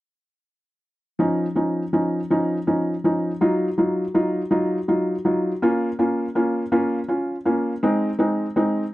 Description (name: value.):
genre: pop.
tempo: 54 BPM (dotted quarters).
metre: 6/8.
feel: straight.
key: Db major.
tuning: A4 = 442 Hz.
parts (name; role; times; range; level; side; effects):
felt-muted upright piano; accompaniment; 1.2-8.8 s; F3 to F4; -20 LUFS; equal; none.
room: moderate booth ambience, RT60 0.2 s.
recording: dry, close 1970s-style studio recording.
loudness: -20 LUFS.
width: side -17 dB against mid.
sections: 1.2-8.9 A section.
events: none.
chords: 1.2 Dbadd9; 3.4 Ebmadd9; 5.6 Bbm; 7.8 Ab.